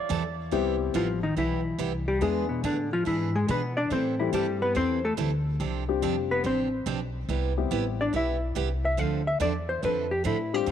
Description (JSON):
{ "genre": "country, western swing", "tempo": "142 BPM", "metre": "4/4", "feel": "swing 68% on 8ths", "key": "C major", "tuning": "A4 = 440 Hz", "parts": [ { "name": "mellow clarinet", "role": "second line", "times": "0.0-0.5 s", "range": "D5", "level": "-37 LUFS", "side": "right 6 dB", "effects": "tape echo" }, { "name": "picked steel-string acoustic guitar", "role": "accompaniment", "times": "0.1-10.7 s", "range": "C3 to A4", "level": "-32 LUFS", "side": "right 10 dB", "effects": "none" }, { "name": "upright bass", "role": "bass", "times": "0.1-10.7 s", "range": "F1 to B2", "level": "-31 LUFS", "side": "left 1 dB", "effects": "none" }, { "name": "dark upright piano", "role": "accompaniment", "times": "0.5-10.7 s", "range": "G3 to G#4", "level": "-30 LUFS", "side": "left 12 dB", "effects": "none" }, { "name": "hollow-body jazz guitar", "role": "melody", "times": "1.0-10.7 s", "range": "B2 to F5", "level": "-27 LUFS", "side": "left 2 dB", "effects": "none" } ], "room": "light reverb, small room ambience", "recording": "1960s-style stereo with parts hard left and right", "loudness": "-25 LUFS", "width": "side -9 dB against mid", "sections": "0.5-10.7 A section", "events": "hollow-body jazz guitar solo 0.5-10.7", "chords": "0.0 C6; 0.5 Cmaj7; 2.2 E7; 3.9 Am7; 5.6 G7sus4; 7.3 Cmaj7; 9.0 Dm7" }